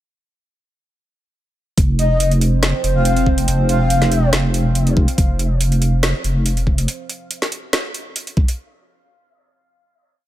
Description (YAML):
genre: deep dubstep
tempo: 141 BPM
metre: 4/4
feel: swing 53% on 16ths, half-time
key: unclear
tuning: A4 = 440 Hz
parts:
  - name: dark analog pad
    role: sustained chords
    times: 2.2-6.8 s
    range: F3 to C5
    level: -25 LUFS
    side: right 2 dB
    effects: chorus, phaser
  - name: deep soft wobble bass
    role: bass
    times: 1.8-6.9 s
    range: F1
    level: -16 LUFS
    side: equal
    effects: chorus
  - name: electronic kick drum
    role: drums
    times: 1.8-8.5 s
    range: none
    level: -16 LUFS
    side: equal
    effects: overdrive
  - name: garage drum kit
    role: drums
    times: 1.8-8.6 s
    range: hi-hat, snare drum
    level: -22 LUFS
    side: equal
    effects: overdrive
  - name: breathy flute-like synth lead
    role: melody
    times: 2.0-4.3 s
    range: Eb5 to F5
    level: -24 LUFS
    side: left 2 dB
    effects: ensemble chorus, dub echo
room: digital ambience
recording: none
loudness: -15 LUFS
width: side -14 dB against mid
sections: 1.8-8.6 drop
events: drop 1.8-8.6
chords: 1.8 F5